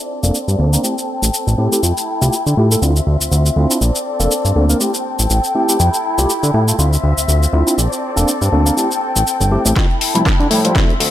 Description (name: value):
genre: filtered disco house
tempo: 121 BPM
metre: 4/4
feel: swing 56% on 16ths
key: F major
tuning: A4 = 440 Hz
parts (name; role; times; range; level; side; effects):
- muted studio violin section; sustained chords; 0.0-11.1 s; C4 to G5; -20 LUFS; left 2 dB; vintage 12-bit sampler grit, sidechain pumping, low-pass filter
- bright tine electric piano; accompaniment; 0.2-10.8 s; F3 to Bb4; -20 LUFS; equal; phaser, sidechain pumping, low-pass filter
- fat analog bass; bass; 0.2-11.1 s; F1 to D3; -15 LUFS; equal; tube saturation, sidechain pumping, high-pass filter, low-pass filter
- house drum kit; drums; 0.2-11.1 s; hi-hat, shaker, snare drum; -20 LUFS; left 1 dB; overdrive, sidechain pumping on perc, sidechain pumping on hats
- electronic kick drum; drums; 9.8-10.9 s; none; -15 LUFS; equal; none
room: light reverb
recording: none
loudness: -13 LUFS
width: side -12 dB against mid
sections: 0.0-9.8 A section; 9.8-11.1 B section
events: filter sweep 0.0-9.8, 9.8-11.1; build-up 9.8-11.1; drum fill 9.8-11.1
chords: 0.0 Bbmaj9; 0.8 Am7; 1.8 Fmaj9; 2.8 Dm9; 3.8 Bbmaj9; 4.8 Am7; 5.8 Fmaj9; 6.8 Dm9; 7.8 Bbmaj9; 8.8 Am7; 9.8 Fmaj9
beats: 0.34 0.84 1.33 | 1.83 2.33 2.82 3.32 | 3.81 4.31 4.80 5.30 | 5.80 6.29 6.79 7.28 | 7.78 8.28 8.77 9.27 | 9.76 10.26 10.75